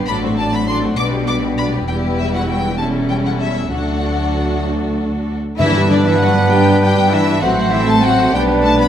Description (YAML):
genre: quick classical-period movement for symphony orchestra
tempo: 66 BPM (dotted quarters)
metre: 6/8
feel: straight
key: G major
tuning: A4 = 439 Hz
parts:
  - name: rich chamber violin section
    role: second line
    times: 0.0-8.8 s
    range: D4 to D5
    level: -25 LUFS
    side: left 3 dB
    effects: none
  - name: warm studio viola section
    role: accompaniment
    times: 0.0-8.9 s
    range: F#3 to G4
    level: -24 LUFS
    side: right 1 dB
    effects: none
  - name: mellow French horn section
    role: sustained chords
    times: 0.0-8.9 s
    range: F#3 to D4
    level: -22 LUFS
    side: left 4 dB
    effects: none
  - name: warm chamber double bass section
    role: bass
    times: 0.0-8.9 s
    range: E1 to G2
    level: -21 LUFS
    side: right 2 dB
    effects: none
  - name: warm studio cello section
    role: bass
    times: 0.0-8.9 s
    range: D2 to B3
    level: -21 LUFS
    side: right 2 dB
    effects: none
  - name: rich chamber violin section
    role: melody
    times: 0.1-8.9 s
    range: D5 to D6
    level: -21 LUFS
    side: left 4 dB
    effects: none
  - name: mellow clarinet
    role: second line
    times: 5.6-8.9 s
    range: C4 to D4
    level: -21 LUFS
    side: left 1 dB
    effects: none
  - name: mellow flute section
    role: second line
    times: 5.6-8.9 s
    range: D5 to B5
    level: -24 LUFS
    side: left 2 dB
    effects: none
  - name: mellow bassoon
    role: accompaniment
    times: 5.6-8.9 s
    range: G3 to B3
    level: -22 LUFS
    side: right 3 dB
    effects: none
  - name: warm trumpet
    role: stabs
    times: 5.6-8.9 s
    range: B4 to C5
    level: -21 LUFS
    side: right 1 dB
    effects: none
  - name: timpani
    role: percussion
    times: 5.6-6.5 s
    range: G2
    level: -23 LUFS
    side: equal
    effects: none
room: wet scoring stage reverb, RT60 1.6 s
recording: none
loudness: -13 LUFS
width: side -10 dB against mid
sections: 0.0-5.6 A section; 5.6-8.9 B section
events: none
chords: 0.1 D7/A; 1.0 G/B; 1.9 Em; 2.8 A7/E; 3.7 D; 5.6 G; 7.4 F#dim/A; 8.3 G/B